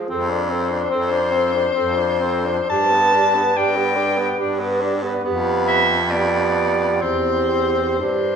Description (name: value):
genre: classical, lyrical piece for single-reed quartet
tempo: 57-75 BPM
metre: 3/4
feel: rubato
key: unclear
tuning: A4 = 441 Hz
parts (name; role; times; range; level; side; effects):
- clear alto saxophone; second line; 0.0-8.4 s; G4 to C5; -25 LUFS; right 7 dB; none
- clear tenor saxophone; accompaniment; 0.0-8.4 s; B3 to D4; -24 LUFS; left 1 dB; none
- clear soprano saxophone; melody; 0.1-8.4 s; C5 to A5; -19 LUFS; left 2 dB; none
- bright baritone saxophone; bass; 0.1-8.4 s; E2 to G2; -24 LUFS; right 1 dB; none
room: wet recital hall reverb, RT60 1.6 s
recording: recorded in a church or concert hall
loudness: -16 LUFS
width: side -7 dB against mid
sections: 0.0-8.4 A section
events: none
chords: 0.1 Dm7/F; 2.7 G; 5.2 G7/F; 7.0 C/E